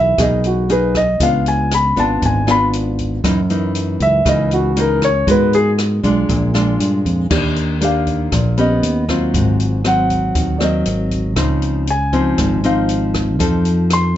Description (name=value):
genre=bossa nova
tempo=118 BPM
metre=4/4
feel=straight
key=unclear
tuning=A4 = 439 Hz
part: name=warm grand piano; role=melody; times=0.0-14.2 s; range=F#4 to C6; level=-17 LUFS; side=left 1 dB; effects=none
part: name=nylon-string guitar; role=accompaniment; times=0.0-14.2 s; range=F#2 to A#4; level=-18 LUFS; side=left 1 dB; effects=none
part: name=fingered electric bass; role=bass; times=0.0-14.2 s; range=G#1 to G#2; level=-18 LUFS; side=right 1 dB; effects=none
part: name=open jazz drum kit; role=drums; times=0.2-14.0 s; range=crash cymbal, hi-hat, kick drum, rim click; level=-23 LUFS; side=equal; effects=none
room=moderate studio ambience, RT60 0.5 s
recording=nothing above 7.9 kHz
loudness=-14 LUFS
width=side -12 dB against mid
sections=0.0-7.3 A section; 7.3-14.2 A section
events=grand piano solo 0.0-7.3, 7.3-14.2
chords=0.0 Emaj7#11; 1.2 C#7b9; 3.2 F#6; 5.3 G#m9; 6.3 A#7; 7.3 Ebmaj7; 8.8 Eb7alt; 9.3 Ab13; 10.9 Ab9; 11.4 Dbmaj9; 13.4 F7